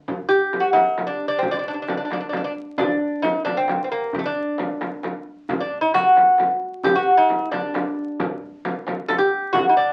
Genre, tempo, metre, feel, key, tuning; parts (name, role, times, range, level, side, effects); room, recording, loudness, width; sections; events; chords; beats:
Persian modal ensemble; 89 BPM (dotted quarters); 6/8; straight; D dastgah homayun; A4 = 440 Hz
frame drum; percussion; 0.1-9.6 s; -29 LUFS; equal
tombak; percussion; 0.1-9.6 s; -38 LUFS; equal
lute; melody; 0.3-9.9 s; A3 to A4; -21 LUFS; equal
wet small room reverb, RT60 0.6 s; very old 78 rpm record, vinyl crackle; -21 LUFS; mono
0.1-9.9 A section
| 0.07 0.75 | 1.43 2.11 | 2.79 3.46 | 4.14 4.82 | 5.49 6.17 | 6.84 7.52 | 8.19 8.87 | 9.54